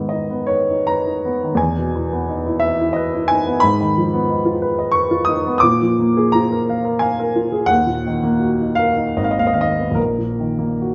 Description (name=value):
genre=classical, romantic nocturne for solo piano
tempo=72-91 BPM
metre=3/4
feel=rubato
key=Eb minor from 3.6 s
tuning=A4 = 440 Hz
part: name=warm baby grand piano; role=solo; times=0.0-10.9 s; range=Ab1 to Eb6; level=-18 LUFS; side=equal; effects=none
room=moderate recital hall reverb, RT60 1.3 s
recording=nothing above 7.6 kHz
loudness=-18 LUFS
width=mono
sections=0.0-10.9 A section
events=none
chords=0.0 G#m; 1.6 Emaj7; 3.6 Fm7b5/Ab; 5.6 Bb7; 7.7 Ebm; 9.2 Abm; 10.0 Ebm/Bb